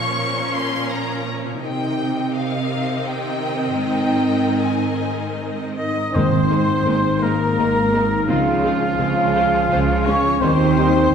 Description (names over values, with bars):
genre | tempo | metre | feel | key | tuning
cinematic | 76-85 BPM | 3/4 | rubato | Ab major | A4 = 440 Hz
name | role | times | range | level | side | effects
rich studio violin section | melody | 0.0-10.9 s | Eb4 to Db6 | -28 LUFS | left 3 dB | none
clear symphonic violin section | second line | 0.0-11.1 s | Eb4 to Eb5 | -28 LUFS | left 2 dB | none
clear symphonic viola section | accompaniment | 0.0-10.9 s | Eb3 to C5 | -25 LUFS | right 2 dB | none
concert harp | arpeggios | 0.0-11.1 s | Ab2 to Bb5 | -26 LUFS | left 4 dB | none
clear symphonic cello section | bass | 0.0-11.0 s | Ab2 to Eb3 | -24 LUFS | right 2 dB | none
warm French horn section | sustained chords | 5.7-11.1 s | F3 to Eb4 | -23 LUFS | left 1 dB | none
mellow hollow concert flute | second line | 5.8-11.1 s | F5 to Eb6 | -23 LUFS | equal | none
warm oboe | second line | 5.8-11.1 s | F4 to Eb5 | -25 LUFS | right 2 dB | none
clear symphonic double bass section | bass | 6.1-11.0 s | Ab1 to Eb2 | -24 LUFS | right 3 dB | none
timpani | percussion | 6.2-7.2 s | Ab2 | -23 LUFS | right 1 dB | none
room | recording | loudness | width
wet scoring stage reverb, RT60 1.6 s | heard from further back in the room | -17 LUFS | side -7 dB against mid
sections
0.0-6.1 A section; 6.1-11.1 B section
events
none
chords
0.0 Bbm; 1.6 Cm; 6.1 Abadd9; 8.3 Dbmaj7; 10.4 Eb